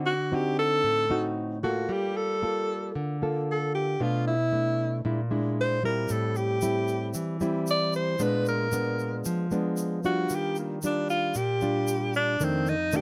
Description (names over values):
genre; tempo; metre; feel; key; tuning
bossa nova; 114 BPM; 4/4; straight; unclear; A4 = 439 Hz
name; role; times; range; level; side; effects
nylon-string guitar; accompaniment; 0.0-13.0 s; F2 to A4; -30 LUFS; equal; none
breathy alto saxophone; melody; 0.1-13.0 s; Bb3 to D5; -30 LUFS; equal; none
tube shaker; percussion; 6.1-13.0 s; none; -43 LUFS; equal; none
room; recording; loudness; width
little or no reverb; close, detailed microphones; -27 LUFS; mono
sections
0.0-13.0 A section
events
alto saxophone solo 0.0-13.0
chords
0.0 D7b9; 1.9 Gm9; 4.0 Bm7b5; 5.0 Bb7#11; 6.1 Am7; 8.2 Bb7b9; 10.3 Ebmaj9; 12.4 F6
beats
0.31 0.84 1.36 | 1.89 2.42 2.94 3.47 | 3.99 4.52 5.04 5.57 | 6.10 6.62 7.15 7.67 | 8.20 8.72 9.25 9.77 | 10.30 10.82 11.35 11.88 | 12.40 12.93